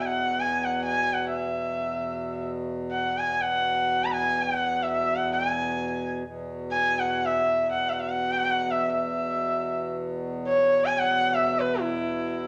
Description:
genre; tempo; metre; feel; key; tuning
indian classical, Hindustani; free time; none; none; E raga bhupali; A4 = 443 Hz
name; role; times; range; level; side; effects
warm sarangi; melody; 0.0-12.5 s; E4 to B5; -27 LUFS; equal; none
hand-pumped harmonium; drone; 0.0-12.5 s; E2 to B2; -34 LUFS; equal; none
room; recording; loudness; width
wet studio reverb, RT60 0.8 s; none; -26 LUFS; mono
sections
0.0-12.5 A section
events
none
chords
none

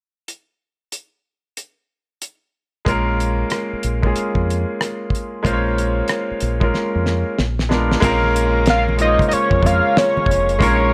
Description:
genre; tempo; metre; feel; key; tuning
R&B, neo-soul; 93 BPM; 4/4; swing 64% on 16ths; unclear; A4 = 439 Hz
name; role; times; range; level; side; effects
damped 70s drum kit; drums; 0.3-10.8 s; hi-hat, kick drum, rim click, snare drum; -23 LUFS; equal; none
clear baby grand piano; accompaniment; 2.8-10.9 s; Ab3 to Db5; -22 LUFS; equal; none
deep dub fingered electric bass; bass; 2.9-10.9 s; F1 to F2; -23 LUFS; equal; none
tonewheel organ; sustained chords; 8.0-10.9 s; Db3 to F4; -33 LUFS; equal; none
congas; percussion; 8.0-10.5 s; none; -30 LUFS; equal; none
fat analog lead; melody; 8.7-10.9 s; Db5 to F5; -19 LUFS; equal; chorus
room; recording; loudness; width
light reverb; none; -18 LUFS; mono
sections
0.3-2.9 A section; 2.9-8.0 B section; 8.0-10.9 C section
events
drum fill 6.7-8.0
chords
0.3 N.C.; 2.9 Bbm7; 7.4 Bb7b9; 8.0 Bbm7

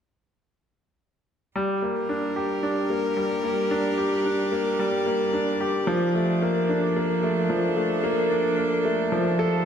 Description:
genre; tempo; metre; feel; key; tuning
piano and strings electronica; 111 BPM; 4/4; straight; G minor; A4 = 438 Hz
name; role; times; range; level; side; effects
rich string quartet; sustained chords; 1.6-9.7 s; F3 to D5; -28 LUFS; right 2 dB; none
clear baby grand piano; riff; 1.6-9.7 s; F3 to A4; -23 LUFS; left 1 dB; tape echo
room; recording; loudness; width
wet recital hall reverb, RT60 1.4 s; none; -22 LUFS; side -8 dB against mid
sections
1.6-9.7 A section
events
build-up 1.6-9.7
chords
1.6 Gm; 5.9 Bbmaj7/F

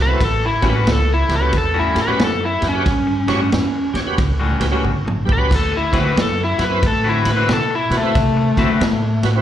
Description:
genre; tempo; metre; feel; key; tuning
electric blues shuffle; 91 BPM; 4/4; swing 63% on 8ths; A mixolydian; A4 = 441 Hz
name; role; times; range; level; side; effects
overdriven slide guitar; melody; 0.0-9.2 s; A3 to B4; -19 LUFS; left 2 dB; slapback echo
bright tonewheel organ; accompaniment; 0.0-9.4 s; C4 to C#5; -25 LUFS; right 4 dB; slow rotary speaker, overdrive, chorus vibrato, slapback echo
upright bass; bass; 0.0-9.4 s; G1 to C3; -20 LUFS; right 1 dB; none
vintage drum kit; drums; 0.2-9.3 s; kick drum, ride cymbal, snare drum, splash cymbal, toms; -21 LUFS; right 1 dB; none
electric guitar at the edge of break-up; riff; 0.4-8.9 s; A2 to B4; -24 LUFS; left 4 dB; slapback echo
room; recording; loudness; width
small room ambience; live gig heard through the venue's PA, club reverb; -15 LUFS; side -11 dB against mid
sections
0.0-9.4 A section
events
electric slide guitar solo 0.0-9.4; drum fill 4.8-5.5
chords
0.2 A13; 5.5 D13

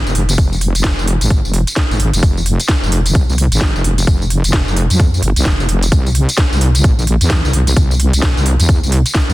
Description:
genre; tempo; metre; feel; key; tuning
bass house; 130 BPM; 4/4; swing 60% on 16ths; unclear; A4 = 440 Hz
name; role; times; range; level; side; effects
wobble bass; bass; 0.0-9.3 s; F1 to F2; -14 LUFS; equal; chorus, tube saturation, sidechain pumping
garage drum kit; drums; 0.1-9.3 s; hi-hat, snare drum, tambourine; -18 LUFS; equal; none
electronic kick drum; drums; 0.4-9.3 s; none; -16 LUFS; equal; none
room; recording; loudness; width
little or no reverb; dense, heavily limited modern master; -11 LUFS; side -18 dB against mid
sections
0.0-9.3 A section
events
none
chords
none

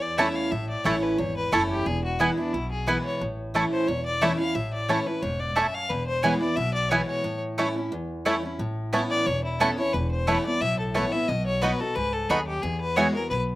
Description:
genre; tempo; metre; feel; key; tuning
bluegrass; 178 BPM; 4/4; swing 53% on 8ths; A major; A4 = 440 Hz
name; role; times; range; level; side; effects
clear fiddle; melody; 0.0-13.4 s; D4 to F5; -28 LUFS; left 2 dB; slapback echo
picked steel-string acoustic guitar; accompaniment; 0.0-13.6 s; E2 to F#4; -28 LUFS; equal; none
upright bass; bass; 0.0-13.6 s; E1 to E2; -31 LUFS; equal; none
bluegrass banjo; melody; 0.2-13.1 s; A3 to F#4; -29 LUFS; right 1 dB; none
mandolin; stabs; 0.2-13.1 s; A3 to B5; -25 LUFS; right 2 dB; slapback echo
room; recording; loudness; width
little or no reverb; recorded outdoors, with no room sound; -23 LUFS; side -16 dB against mid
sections
0.0-8.6 A section; 8.6-13.6 B section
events
break 7.2-8.6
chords
0.0 A; 1.9 E; 3.2 A; 5.9 E; 7.2 A; 8.6 Aadd9; 9.9 Esus4; 11.3 B; 12.6 Eadd9

